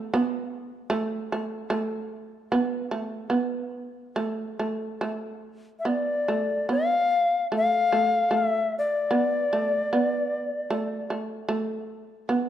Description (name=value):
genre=japanese traditional, Japanese chamber music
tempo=74 BPM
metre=4/4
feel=rubato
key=unclear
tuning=A4 = 440 Hz
part: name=shamisen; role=second line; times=0.0-12.5 s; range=A3 to B3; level=-27 LUFS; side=right 3 dB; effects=none
part: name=bright reedy long shakuhachi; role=melody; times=5.8-11.1 s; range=D5 to F5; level=-23 LUFS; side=left 3 dB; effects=none
room=moderate concert hall reverb, RT60 1.8 s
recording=dark, warm production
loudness=-24 LUFS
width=side -10 dB against mid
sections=0.0-5.0 A section; 5.0-12.5 B section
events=none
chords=none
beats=0.12 0.92 | 1.72 2.51 3.33 4.18 | 5.04 5.86 6.69 7.50 | 8.32 9.12 9.91 10.70 | 11.51 12.31